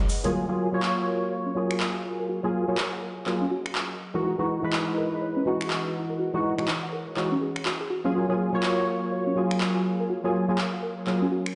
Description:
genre	deep house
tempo	123 BPM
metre	4/4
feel	swing 61% on 16ths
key	F# major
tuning	A4 = 439 Hz
part	warm analog pad	sustained chords	0.0-11.6 s	E3 to F#5	-36 LUFS	equal	chorus, vintage 12-bit sampler grit
part	deep house drum kit	drums	0.0-11.5 s	finger snaps, handclaps, hi-hat	-33 LUFS	equal	overdrive
part	soft round pluck	arpeggios	0.2-11.4 s	C#4 to F#5	-35 LUFS	equal	chorus, delay
part	percussive organ stab	stabs	0.2-11.3 s	E3 to C#5	-29 LUFS	equal	ensemble chorus, tape echo
room	moderate lush hall reverb, RT60 1.7 s, digital ambience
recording	played on a big sound system in a bare room, stone room reverb, nothing above 10.3 kHz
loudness	-27 LUFS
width	mono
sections	0.3-11.6 A section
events	filter sweep on synth stab 0.3-11.6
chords	0.3 F#maj9; 4.2 Emaj9; 8.1 F#maj9

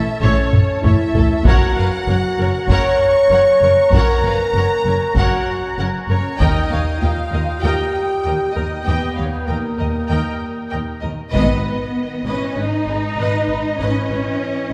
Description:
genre	cinematic, epic orchestral film score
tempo	97 BPM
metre	4/4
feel	straight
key	G# minor from 11.3 s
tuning	A4 = 440 Hz
part	clear symphonic violin section	second line	0.0-14.2 s	G#4 to C#6	-31 LUFS	equal	none
part	clear woodwind section	sustained chords	0.0-11.0 s	G3 to A#5	-30 LUFS	equal	none
part	warm French horn section	sustained chords	0.0-14.7 s	D#3 to C#5	-22 LUFS	equal	none
part	rich symphonic violin section	melody	0.2-14.7 s	A4 to G5	-32 LUFS	equal	none
part	clear symphonic viola section	accompaniment	0.2-14.2 s	G4 to D#5	-30 LUFS	equal	none
part	clear symphonic double bass section	bass	0.2-14.2 s	F#1 to D#2	-25 LUFS	equal	none
part	warm symphonic cello section	bass	0.2-14.7 s	D#2 to D#4	-25 LUFS	equal	none
part	taiko ensemble	drums	0.2-7.6, 11.3-12.5 s	none	-20 LUFS	equal	none
room	wet scoring stage reverb, RT60 1.8 s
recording	heard from further back in the room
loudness	-17 LUFS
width	mono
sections	0.0-11.3 A section; 11.3-14.7 B section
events	drum fill 0.5-1.5; band accent 11.3-12.0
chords	0.0 A; 1.5 F#; 6.4 D#; 11.3 G#m

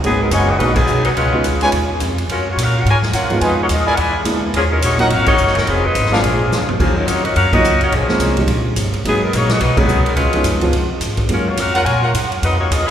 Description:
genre	jazz, big band swing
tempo	213 BPM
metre	4/4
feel	swing 60% on 8ths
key	Eb minor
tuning	A4 = 443 Hz
part	dark upright piano	accompaniment	0.0-11.5 s	Eb3 to Gb4	-22 LUFS	right 1 dB	none
part	upright bass	bass	0.0-12.9 s	F1 to Bb2	-19 LUFS	equal	none
part	swinging big-band drum kit	drums	0.0-12.8 s	crash cymbal, hi-hat, kick drum, ride cymbal, snare drum, toms	-22 LUFS	equal	none
part	clear saxophone section	melody	0.1-12.9 s	F3 to Ab5	-18 LUFS	left 2 dB	none
part	warm trumpet section	stabs	0.3-6.2, 11.7-12.9 s	D4 to Ab5	-22 LUFS	equal	none
room	wet church reverb, RT60 3.2 s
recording	recorded in a church or concert hall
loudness	-13 LUFS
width	side -9 dB against mid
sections	0.0-6.8 A section; 6.8-12.9 A section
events	band accent 0.7, 5.2, 7.5, 9.8; drum fill 6.5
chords	0.0 Abm7; 1.2 Db7; 2.3 Gbmaj7; 3.4 Fm7b5; 4.0 E7#11; 4.5 Ebm7; 5.7 Fm7b5; 6.2 Bb7; 6.8 Ebm7; 7.9 Bbm7; 8.5 Gm; 9.0 Abm7; 10.2 Db7; 11.3 Gbmaj7

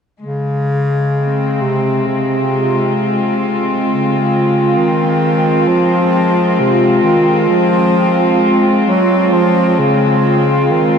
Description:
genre	ambient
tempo	66 BPM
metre	4/4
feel	straight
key	F minor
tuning	A4 = 444 Hz
part	clear bass clarinet	melody	0.2-11.0 s	C3 to Gb3	-15 LUFS	equal	ping-pong delay
part	rich studio cello section	sustained chords	0.2-11.0 s	Ab3 to F4	-13 LUFS	equal	none
room	wet huge ambient reverb, RT60 9.2 s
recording	dark, warm production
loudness	-11 LUFS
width	side -6 dB against mid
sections	0.2-11.0 A section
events	none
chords	0.2 Fm

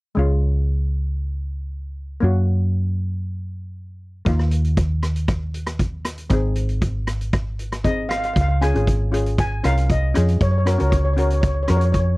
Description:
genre	calypso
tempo	117 BPM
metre	4/4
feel	straight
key	Db major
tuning	A4 = 440 Hz
part	steel pan	accompaniment	0.1-12.0 s	Ab3 to Bb4	-26 LUFS	left 2 dB	none
part	hollow-body short-scale fingered electric bass	bass	0.2-12.2 s	Ab1 to Gb2	-20 LUFS	equal	none
part	street-band drum kit	drums	4.3-12.1 s	hi-hat, kick drum, rim click	-23 LUFS	equal	none
part	steel pan	melody	7.8-12.1 s	Db5 to Ab5	-25 LUFS	left 1 dB	none
room	little or no reverb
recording	dry, close 1970s-style studio recording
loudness	-18 LUFS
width	side -22 dB against mid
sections	0.2-8.4 A section; 8.4-12.2 B section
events	none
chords	0.2 Db; 2.2 Gb; 4.3 Ebsus2; 6.3 Ab; 8.4 Dbmaj7; 10.4 Gbmaj7

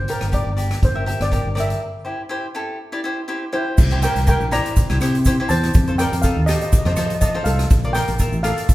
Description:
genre	calypso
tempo	122 BPM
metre	4/4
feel	straight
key	unclear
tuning	A4 = 440 Hz
part	steel pan	melody	0.0-8.7 s	E4 to Bb5	-24 LUFS	equal	none
part	modern bright fingered electric bass	bass	0.0-8.5 s	G1 to F3	-21 LUFS	equal	none
part	cavaquinho	accompaniment	0.1-8.7 s	E4 to E5	-26 LUFS	left 1 dB	none
part	street-band drum kit	drums	0.1-8.7 s	crash cymbal, hi-hat, kick drum, rim click	-20 LUFS	equal	none
part	tube shaker	percussion	3.8-8.7 s	none	-35 LUFS	right 6 dB	none
room	moderate large studio reverb, RT60 1.4 s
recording	band playing live in one room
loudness	-17 LUFS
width	side -16 dB against mid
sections	0.0-3.8 A section; 3.8-8.7 B section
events	break 1.8-3.8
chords	0.0 Gm; 1.8 C; 3.8 C7; 5.7 F7; 7.7 Bbmaj7

